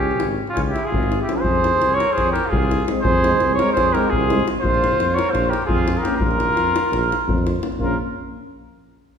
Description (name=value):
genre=balkan folk, Balkan brass band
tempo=342 BPM (eighths)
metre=9/8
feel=straight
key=Bb dorian sharp4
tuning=A4 = 441 Hz
part: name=clear flugelhorn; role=melody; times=0.0-8.0 s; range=F4 to Db5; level=-20 LUFS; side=right 1 dB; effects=none
part: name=warm trumpet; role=second line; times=0.0-8.0 s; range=Db4 to Bb4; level=-27 LUFS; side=equal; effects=none
part: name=mellow tuba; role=bass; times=0.0-8.0 s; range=Ab1 to F2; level=-24 LUFS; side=equal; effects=none
part: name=davul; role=percussion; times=0.1-8.0 s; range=none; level=-24 LUFS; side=left 2 dB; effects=none
part: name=mellow euphonium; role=accompaniment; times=1.3-8.0 s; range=C4 to Db4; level=-30 LUFS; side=left 6 dB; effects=none
part: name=warm euphonium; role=accompaniment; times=1.3-8.0 s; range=F3 to Bb3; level=-30 LUFS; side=right 4 dB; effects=none
room=wet recital hall reverb, RT60 1.8 s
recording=recorded in a church or concert hall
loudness=-17 LUFS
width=side -7 dB against mid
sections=0.0-7.8 A section; 7.8-9.2 B section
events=speeding up 0.0-9.2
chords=0.0 Db; 1.5 Fm; 4.6 Bb5; 7.8 Bbm